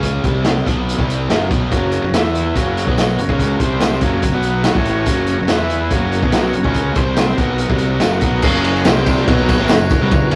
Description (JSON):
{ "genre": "garage rock duo or trio", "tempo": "143 BPM", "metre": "4/4", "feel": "straight", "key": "F# mixolydian", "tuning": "A4 = 440 Hz", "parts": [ { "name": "biting overdriven guitar", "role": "riff", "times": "0.0-10.4 s", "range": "F#2 to E4", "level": "-21 LUFS", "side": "equal", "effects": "none" }, { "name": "fuzz fingered electric bass", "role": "bass", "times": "0.0-10.4 s", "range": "F#1 to E2", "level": "-24 LUFS", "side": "equal", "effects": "overdrive" }, { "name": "crunchy breakbeat drum kit", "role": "drums", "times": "0.0-10.4 s", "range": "crash cymbal, hi-hat, kick drum, ride cymbal, snare drum", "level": "-20 LUFS", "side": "equal", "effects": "none" }, { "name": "combo organ", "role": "sustained chords", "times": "1.7-10.4 s", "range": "B3 to A#5", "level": "-26 LUFS", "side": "equal", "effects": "none" }, { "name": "tambourine", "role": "percussion", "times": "2.1-10.2 s", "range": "none", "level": "-42 LUFS", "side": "equal", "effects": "none" } ], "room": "moderate stone room reverb, RT60 1.2 s", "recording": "rough rehearsal-room recording, tube saturation, cassette tape", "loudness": "-16 LUFS", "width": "mono", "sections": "0.0-8.4 A section; 8.4-10.4 B section", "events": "transistor combo organ fill 4.4-5.1", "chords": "0.2 C5; 0.7 F#; 2.1 E5; 2.6 F#; 3.6 C5; 4.0 F#; 4.3 B5; 4.8 F#; 5.5 E5; 5.9 F#; 7.0 C5; 7.4 F#; 8.9 C5; 9.3 F#" }